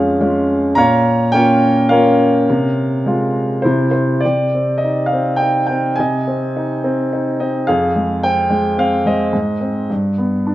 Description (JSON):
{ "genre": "classical, lyrical solo piano", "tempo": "106 BPM", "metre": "3/4", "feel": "rubato", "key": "F minor, C minor from 4.2 s", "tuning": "A4 = 442 Hz", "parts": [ { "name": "warm baby grand piano", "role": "solo", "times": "0.0-10.5 s", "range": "F2 to Bb5", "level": "-14 LUFS", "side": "equal", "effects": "none" } ], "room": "moderate recital hall reverb, RT60 1.4 s", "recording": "minimal, uncompressed stereo recording", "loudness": "-14 LUFS", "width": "side -15 dB against mid", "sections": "0.0-4.2 A section; 4.2-10.5 B section", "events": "none", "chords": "0.0 Db/F; 0.8 Bbm; 2.5 Fm/C; 3.6 C; 4.2 Cmadd9; 6.0 Ab/C; 7.7 Fm; 9.3 Ab; 9.9 G", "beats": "0.21 | 0.77 1.34 1.91 | 2.47 3.05 3.64 | 4.24 4.83 5.41 | 5.98 6.56 7.12 | 7.68 8.23 8.79 | 9.34 9.90 10.48" }